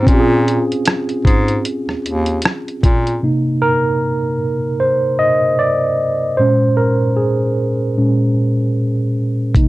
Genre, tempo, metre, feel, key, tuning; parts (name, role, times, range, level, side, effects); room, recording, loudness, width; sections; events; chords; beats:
lo-fi hip hop; 76 BPM; 4/4; swing 57% on 16ths; A4 = 440 Hz
tine electric piano; accompaniment; 0.0-9.7 s; Bb2 to Eb5; -15 LUFS; right 1 dB; medium stereo tremolo, low-pass filter
bright bass clarinet; bass; 0.0-3.2 s; Eb2 to Bb2; -17 LUFS; left 1 dB
lo-fi sampler-style drum kit; drums; 0.1-3.2, 9.5-9.7 s; hi-hat, kick drum, rim click; -14 LUFS; equal; overdrive
moderate small room reverb, RT60 0.5 s; dark, warm production; -14 LUFS; side -18 dB against mid
0.0-3.2 A section; 3.2-9.7 B section
tine electric piano solo 3.2-9.7
0.1 Bbm9; 3.2 Cm9; 6.4 Bbm7
| 0.07 0.86 1.65 2.44 | 3.23 4.01 4.80 5.59 | 6.38 7.17 7.96 8.75 | 9.54